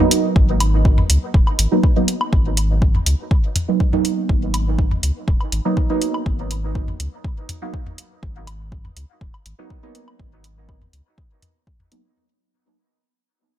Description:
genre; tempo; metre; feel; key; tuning
dub techno; 122 BPM; 4/4; straight; G# minor; A4 = 442 Hz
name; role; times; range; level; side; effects
deep mellow chord stab; stabs; 0.0-12.0 s; F#3 to D#4; -22 LUFS; right 3 dB; chorus, phaser, dub echo
electronic toms and woodblock; percussion; 0.0-11.9 s; none; -26 LUFS; left 1 dB; sidechain pumping on perc, sidechain pumping on toms, dub echo
electronic hi-hat; drums; 0.1-12.0 s; none; -21 LUFS; equal; none
warm sub bass; bass; 0.4-11.0 s; D#1 to C#2; -20 LUFS; equal; sidechain pumping
electronic kick drum; drums; 0.4-11.8 s; none; -18 LUFS; equal; none
room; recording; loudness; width
little or no reverb; none; -16 LUFS; side -11 dB against mid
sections
0.0-12.2 A section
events
fade-out 0.0-12.2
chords
0.0 G#m7

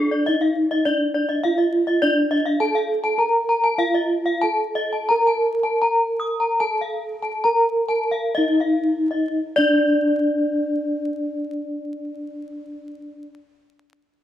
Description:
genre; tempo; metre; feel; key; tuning
gamelan; 57-103 BPM; 4/4; straight; D pelog; A4 = 440 Hz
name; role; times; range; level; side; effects
gamelan-type bronze metallophone; melody; 0.0-13.3 s; D4 to Bb4-20c; -21 LUFS; right 1 dB; none
gamelan-type bronze metallophone; arpeggios; 0.0-13.3 s; A4-30c to Eb6+20c; -22 LUFS; left 2 dB; none
room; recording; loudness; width
light reverb; vinyl crackle; -18 LUFS; side -11 dB against mid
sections
0.0-9.4 A section; 9.4-13.6 B section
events
slowing down 3.2-9.4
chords
none

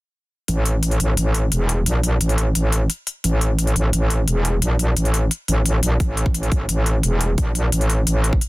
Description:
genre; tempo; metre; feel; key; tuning
dark technical drum and bass; 174 BPM; 4/4; straight; unclear; A4 = 440 Hz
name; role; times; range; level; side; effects
metallic wobble bass; bass; 0.5-8.4 s; E1 to Bb1; -18 LUFS; equal; chorus, overdrive, sidechain pumping
electronic hi-hat; drums; 0.5-8.5 s; none; -24 LUFS; left 2 dB; none
electronic kick drum; drums; 6.0-8.4 s; none; -20 LUFS; equal; none
room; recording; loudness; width
little or no reverb; dense, heavily limited modern master; -17 LUFS; side -20 dB against mid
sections
0.5-8.5 A section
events
none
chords
none

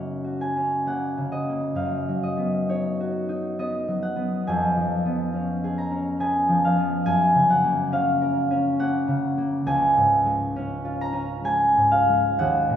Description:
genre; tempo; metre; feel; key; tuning
classical, solo harp piece; 68 BPM; 3/4; rubato; unclear; A4 = 442 Hz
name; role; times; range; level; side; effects
concert harp; solo; 0.0-12.8 s; C#2 to A#5; -21 LUFS; equal; none
room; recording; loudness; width
wet concert hall reverb, RT60 1.9 s; heard from further back in the room; -21 LUFS; side -9 dB against mid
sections
0.0-12.8 A section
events
none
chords
0.0 F#; 1.8 B/F#; 4.4 C#7/E#; 7.1 F#; 9.7 C#

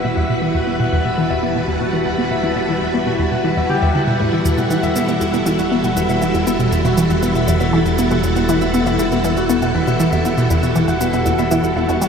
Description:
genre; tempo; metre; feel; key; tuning
ambient, sequencer-driven space music; 119 BPM; 4/4; straight; E minor; A4 = 441 Hz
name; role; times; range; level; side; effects
string machine, full ensemble; sustained chords; 0.0-12.1 s; G3 to B4; -20 LUFS; right 1 dB; ensemble chorus
concert harp; arpeggios; 0.0-12.1 s; E4 to F#5; -23 LUFS; left 3 dB; auto-pan, low-pass filter, ping-pong delay
resonant blip pluck; riff; 0.0-12.1 s; E2 to B3; -18 LUFS; equal; phaser, ping-pong delay
fat analog bass; bass; 0.0-12.1 s; E1; -29 LUFS; equal; none
wind-like tuned noise texture; texture; 0.0-12.1 s; E4 to A5; -27 LUFS; right 3 dB; built-in reverb
shaker and woodblock; percussion; 4.5-12.1 s; none; -32 LUFS; right 2 dB; ping-pong delay
room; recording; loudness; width
wet cathedral reverb, RT60 5.7 s; in a vast, echoing space; -15 LUFS; side -6 dB against mid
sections
0.0-12.1 A section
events
fade-in on analog synth bass 0.0-12.1; filter sweep on synth arpeggio sound 0.0-12.1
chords
0.0 Emadd9

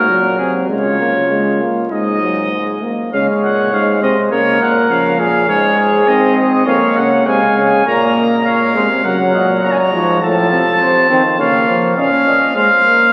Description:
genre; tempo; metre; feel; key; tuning
classical, imitative canzona for brass ensemble; 101 BPM; 4/4; straight; Db major, Bb minor from 7.9 s; A4 = 440 Hz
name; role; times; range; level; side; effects
bright trumpet; melody; 0.0-13.1 s; Ab4 to Bb5; -18 LUFS; equal; none
mellow flugelhorn; second line; 0.0-13.1 s; Eb4 to F5; -21 LUFS; equal; none
warm trombone; accompaniment; 0.0-13.1 s; F3 to Db4; -19 LUFS; equal; none
mellow euphonium; bass; 0.0-12.4 s; F2 to F3; -22 LUFS; equal; none
room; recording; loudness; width
wet cathedral reverb, RT60 4.7 s; very old 78 rpm record, vinyl crackle; -14 LUFS; mono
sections
0.0-3.1 A section; 3.1-7.9 B section; 7.9-13.1 C section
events
none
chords
0.0 Gb; 0.7 Absus4/Db; 1.9 Ab5; 3.1 Db; 4.3 Bbm; 5.5 Ab; 6.7 Db/F; 7.9 Bbm; 9.0 Gb; 10.2 F/A; 11.4 Bbm/Db; 12.6 Fm/Ab

